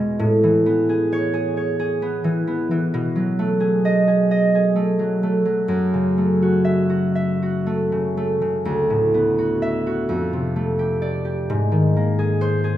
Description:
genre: classical, solo harp piece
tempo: 39-45 BPM (dotted quarters)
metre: 6/8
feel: rubato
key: unclear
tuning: A4 = 440 Hz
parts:
  - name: concert harp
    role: solo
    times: 0.0-12.8 s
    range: D2 to E5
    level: -18 LUFS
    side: equal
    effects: none
room: wet recital hall reverb, RT60 1.3 s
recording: minimal, uncompressed stereo recording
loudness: -18 LUFS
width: side -12 dB against mid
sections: 0.0-12.8 A section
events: none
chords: 0.2 Amaj9; 2.9 B13; 5.7 F#m11; 8.7 D69; 10.1 F69; 11.5 G#add9

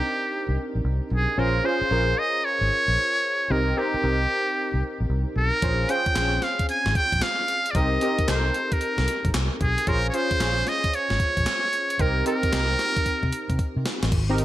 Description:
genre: R&B, new jack swing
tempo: 113 BPM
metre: 4/4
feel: swing 65% on 16ths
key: unclear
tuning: A4 = 440 Hz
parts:
  - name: trumpet with metal mute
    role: melody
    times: 0.0-13.8 s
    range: G4 to Ab5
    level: -24 LUFS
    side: right 1 dB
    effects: none
  - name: warm analog keys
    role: accompaniment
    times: 0.0-14.4 s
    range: C4 to Db5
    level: -28 LUFS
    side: equal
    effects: chorus
  - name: vintage muted fingered electric bass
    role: bass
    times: 0.5-14.4 s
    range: Ab1 to C3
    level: -25 LUFS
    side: equal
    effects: none
  - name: gated 80s digital drum machine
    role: drums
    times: 5.6-14.4 s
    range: crash cymbal, handclaps, hi-hat, kick drum, snare drum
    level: -27 LUFS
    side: equal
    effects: gated reverb, gated reverb snare
room: light reverb, digital ambience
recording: none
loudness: -21 LUFS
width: side -14 dB against mid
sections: 0.0-14.1 A section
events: drum fill 13.1-14.1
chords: 0.0 Cm7; 1.4 Bbm9; 3.5 Cm7; 5.6 Bbm9; 7.7 Cm7; 9.9 Bbm9; 12.0 Cm7

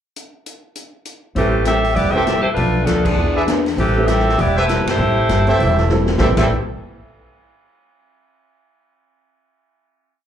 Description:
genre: jazz, big band swing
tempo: 199 BPM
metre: 4/4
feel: swing 60% on 8ths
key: A minor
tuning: A4 = 440 Hz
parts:
  - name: swinging big-band drum kit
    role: drums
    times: 0.2-6.4 s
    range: crash cymbal, hi-hat, kick drum, ride cymbal, snare drum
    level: -24 LUFS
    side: equal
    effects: none
  - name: bright saxophone section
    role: melody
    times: 1.4-6.5 s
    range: E3 to E5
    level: -18 LUFS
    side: equal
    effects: plate reverb, slapback echo
  - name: vintage hollow-body jazz guitar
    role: accompaniment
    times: 1.4-6.5 s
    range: A2 to G#4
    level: -24 LUFS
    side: left 4 dB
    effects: slapback echo
  - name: warm baby grand piano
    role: accompaniment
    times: 1.4-6.5 s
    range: A3 to B4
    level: -23 LUFS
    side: right 3 dB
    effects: plate reverb, slapback echo
  - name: upright bass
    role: bass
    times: 1.4-6.5 s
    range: E1 to E2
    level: -19 LUFS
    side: equal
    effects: none
  - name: clear trumpet section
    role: stabs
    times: 2.1-6.5 s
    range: G4 to G5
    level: -21 LUFS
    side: right 1 dB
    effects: plate reverb, slapback echo
room: moderate club reverb, RT60 0.5 s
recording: live gig heard through the venue's PA, club reverb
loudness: -14 LUFS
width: side -9 dB against mid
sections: 0.2-1.4 pickup bar; 1.4-6.2 A section; 6.2-7.4 final chord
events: band accent 3.0, 4.8; drum fill 5.9-6.2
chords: 0.2 N.C.; 1.4 Am7; 2.6 Bm7b5; 3.2 E7; 3.8 Am7

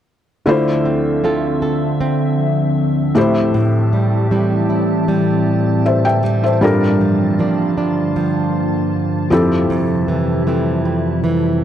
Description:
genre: contemporary R&B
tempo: 78 BPM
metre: 4/4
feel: straight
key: D minor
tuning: A4 = 440 Hz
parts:
  - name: felt-muted upright piano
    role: accompaniment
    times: 0.5-11.6 s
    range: A2 to G5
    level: -19 LUFS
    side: left 2 dB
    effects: none
  - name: glassy FM pad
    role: sustained chords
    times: 0.8-11.6 s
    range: D2 to A5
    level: -18 LUFS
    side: left 1 dB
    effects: ensemble chorus, built-in reverb
  - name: flamenco guitar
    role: arpeggios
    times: 0.5-11.6 s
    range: F2 to A4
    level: -19 LUFS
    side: right 3 dB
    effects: none
room: light reverb, studio reverb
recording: dry, gritty hardware recording, transformer saturation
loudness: -14 LUFS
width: side -10 dB against mid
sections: 0.5-11.6 A section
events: none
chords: 0.5 Dm7; 3.2 Am7; 6.6 Gm7; 9.3 Fmaj7

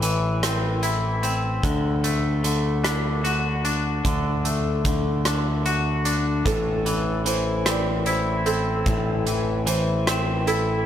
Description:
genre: post-rock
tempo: 50 BPM (dotted quarters)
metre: 6/8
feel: straight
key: A dorian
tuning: A4 = 439 Hz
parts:
  - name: twangy electric guitar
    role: arpeggios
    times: 0.0-10.9 s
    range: A2 to F#4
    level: -25 LUFS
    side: left 3 dB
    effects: analog delay
  - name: growling picked electric bass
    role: bass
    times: 0.0-10.9 s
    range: A1 to D2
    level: -25 LUFS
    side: equal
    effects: overdrive
  - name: big rock drum kit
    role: drums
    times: 0.0-10.7 s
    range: hi-hat, kick drum, rim click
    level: -28 LUFS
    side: right 1 dB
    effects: none
  - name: felt-muted upright piano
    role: arpeggios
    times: 6.5-10.9 s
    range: A4 to D5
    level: -28 LUFS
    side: right 4 dB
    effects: analog delay
room: light reverb, small room ambience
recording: none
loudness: -20 LUFS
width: side -10 dB against mid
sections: 0.0-10.9 A section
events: none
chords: 0.0 Am; 1.6 D; 6.5 Am

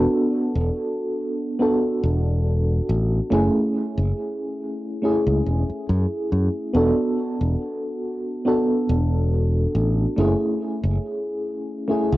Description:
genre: vaporwave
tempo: 70 BPM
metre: 4/4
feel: swing 54% on 16ths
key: unclear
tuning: A4 = 440 Hz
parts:
  - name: mellow FM electric piano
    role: accompaniment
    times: 0.0-12.2 s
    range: A3 to A4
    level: -22 LUFS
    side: equal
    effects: tremolo, lush chorus, tape echo
  - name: modern bright fingered electric bass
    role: bass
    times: 0.0-12.2 s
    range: E1 to F#2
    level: -20 LUFS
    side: equal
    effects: none
room: moderate studio reverb, RT60 0.5 s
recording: home recording on cassette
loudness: -20 LUFS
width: side -17 dB against mid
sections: 0.0-12.2 A section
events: none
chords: 0.0 E9sus4; 3.3 F#m9; 6.8 E9sus4; 10.2 F#m9

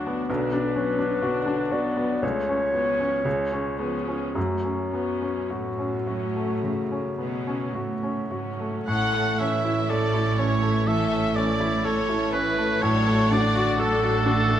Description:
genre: classical, romantic movement for piano and orchestra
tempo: 51-66 BPM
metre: 4/4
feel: rubato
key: F# minor, A major from 8.9 s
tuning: A4 = 440 Hz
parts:
  - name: clear baby grand piano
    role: melody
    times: 0.0-14.6 s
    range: B1 to A4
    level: -26 LUFS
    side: left 1 dB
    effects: none
  - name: rich symphonic viola section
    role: accompaniment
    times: 0.0-14.6 s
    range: D3 to D4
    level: -34 LUFS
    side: right 2 dB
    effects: none
  - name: rich chamber cello section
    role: bass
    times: 0.0-14.6 s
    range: D2 to C#3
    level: -31 LUFS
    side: right 4 dB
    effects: none
  - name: dark clarinet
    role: second line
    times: 0.3-7.8 s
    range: F#4 to D5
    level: -28 LUFS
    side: left 2 dB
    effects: none
  - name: warm symphonic violin section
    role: melody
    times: 8.9-14.6 s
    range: E4 to A4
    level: -35 LUFS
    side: left 3 dB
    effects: none
  - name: bright oboe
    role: second line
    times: 8.9-14.6 s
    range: A4 to F#5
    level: -26 LUFS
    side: right 1 dB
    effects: none
  - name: rich symphonic violin section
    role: second line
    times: 8.9-14.6 s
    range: A4 to F#5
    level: -31 LUFS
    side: left 1 dB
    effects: none
  - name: warm studio double bass section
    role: bass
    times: 8.9-14.6 s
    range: A1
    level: -31 LUFS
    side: right 3 dB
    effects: none
room: moderate recital hall reverb, RT60 1.5 s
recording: none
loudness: -22 LUFS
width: side -10 dB against mid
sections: 0.0-8.9 A section; 8.9-14.6 B section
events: none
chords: 0.3 Bm; 2.2 F#m/C#; 3.3 C#; 4.4 F#m; 8.9 A; 12.8 D/A

